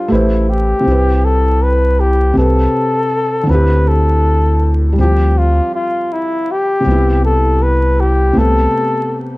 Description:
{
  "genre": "hip hop",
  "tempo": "80 BPM",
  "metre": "4/4",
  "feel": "swing 62% on 16ths",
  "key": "unclear",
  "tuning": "A4 = 440 Hz",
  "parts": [
    { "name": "breathy flugelhorn", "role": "melody", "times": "0.0-9.2 s", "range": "E4 to B4", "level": "-16 LUFS", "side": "left 1 dB", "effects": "low-pass filter" },
    { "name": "felt-muted upright piano", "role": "accompaniment", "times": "0.0-9.4 s", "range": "C3 to C5", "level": "-18 LUFS", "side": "equal", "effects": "cassette tape, low-pass filter" },
    { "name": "soft dub sub bass", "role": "bass", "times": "0.1-8.7 s", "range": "A1 to D2", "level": "-13 LUFS", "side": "equal", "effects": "none" }
  ],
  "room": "moderate studio reverb, RT60 0.6 s",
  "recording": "dark, warm production, vinyl crackle",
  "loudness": "-11 LUFS",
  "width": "side -21 dB against mid",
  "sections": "0.9-9.4 A section",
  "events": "none",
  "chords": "0.1 Am9; 0.9 Cmaj7; 2.4 Am7/C; 3.5 D9sus4; 5.0 G7sus4/D; 6.9 Cmaj7; 8.4 Am7/C"
}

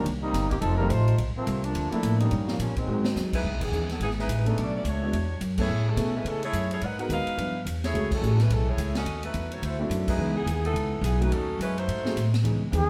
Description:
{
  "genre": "jazz, big band swing",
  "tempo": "213 BPM",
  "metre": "4/4",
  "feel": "swing 61% on 8ths",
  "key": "C# minor from 3.4 s",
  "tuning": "A4 = 442 Hz",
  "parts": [
    { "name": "bright trombone section", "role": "second line", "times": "0.0-3.3 s", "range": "Eb3 to C5", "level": "-32 LUFS", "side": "equal", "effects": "none" },
    { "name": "clear baby grand piano", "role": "accompaniment", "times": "0.0-12.9 s", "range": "E3 to B4", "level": "-34 LUFS", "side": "equal", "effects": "none" },
    { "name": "upright bass", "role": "bass", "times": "0.0-12.9 s", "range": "F1 to C#3", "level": "-29 LUFS", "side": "equal", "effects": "none" },
    { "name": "swinging big-band drum kit", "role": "drums", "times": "0.1-12.8 s", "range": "crash cymbal, hi-hat, kick drum, ride cymbal, snare drum", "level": "-38 LUFS", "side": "equal", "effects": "none" },
    { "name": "warm saxophone section", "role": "melody", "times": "3.4-12.3 s", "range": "E3 to F#5", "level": "-34 LUFS", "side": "equal", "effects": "none" },
    { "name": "clear trumpet", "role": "melody", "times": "12.8-12.9 s", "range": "G#4", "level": "-28 LUFS", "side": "equal", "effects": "none" }
  ],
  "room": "wet club reverb, RT60 0.9 s",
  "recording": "heard from further back in the room",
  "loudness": "-27 LUFS",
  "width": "mono",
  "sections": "0.0-3.4 A section; 3.4-12.4 B section",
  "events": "trombone section solo 0.0-3.4; drum fill 2.9; band accent 3.3, 3.6, 5.5, 8.1, 10.0",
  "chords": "0.1 Cm7; 0.6 F7; 1.2 Bbmaj7; 2.3 Gm7b5; 2.9 Ab7; 3.4 C#m9; 4.6 Bm9; 5.1 E7sus2; 5.7 Amaj7; 6.8 G#m9; 7.4 G13; 7.9 F#m9; 9.1 D#m7b5; 9.6 D9; 10.2 C#m9; 11.3 D#m7b5; 11.9 G#7b9"
}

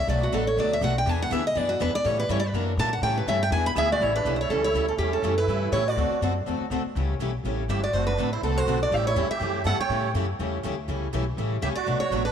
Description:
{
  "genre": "acoustic string swing (jazz manouche)",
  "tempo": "244 BPM",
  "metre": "4/4",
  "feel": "swing 56% on 8ths",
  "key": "A mixolydian",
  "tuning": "A4 = 440 Hz",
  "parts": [
    { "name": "picked steel-string acoustic guitar", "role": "melody", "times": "0.0-12.3 s", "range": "F#4 to B5", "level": "-26 LUFS", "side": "right 1 dB", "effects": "slapback echo" },
    { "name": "upright bass", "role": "bass", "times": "0.0-12.3 s", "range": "F#1 to A#2", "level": "-28 LUFS", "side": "left 1 dB", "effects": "none" },
    { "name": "picked steel-string acoustic guitar", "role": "accompaniment", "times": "0.1-12.2 s", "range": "B2 to A4", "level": "-32 LUFS", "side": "left 12 dB", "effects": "none" },
    { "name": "picked steel-string acoustic guitar", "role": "accompaniment", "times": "0.1-12.2 s", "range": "B2 to B4", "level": "-34 LUFS", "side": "right 11 dB", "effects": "none" },
    { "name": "musette accordion", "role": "second line", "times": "3.8-12.3 s", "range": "C4 to C#5", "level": "-32 LUFS", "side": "right 10 dB", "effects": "none" }
  ],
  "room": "light reverb, studio ambience",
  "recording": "1960s-style stereo with parts hard left and right",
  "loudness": "-23 LUFS",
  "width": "side -8 dB against mid",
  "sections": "0.0-4.0 A section; 4.0-12.3 B section",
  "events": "steel-string acoustic guitar solo 0.0-4.0",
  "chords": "0.1 Bm7; 1.1 E7; 2.0 A7; 2.5 F#aug7; 3.0 A7; 3.5 E7; 4.0 A7; 6.0 D7; 7.0 A7; 7.9 D7; 8.9 A7"
}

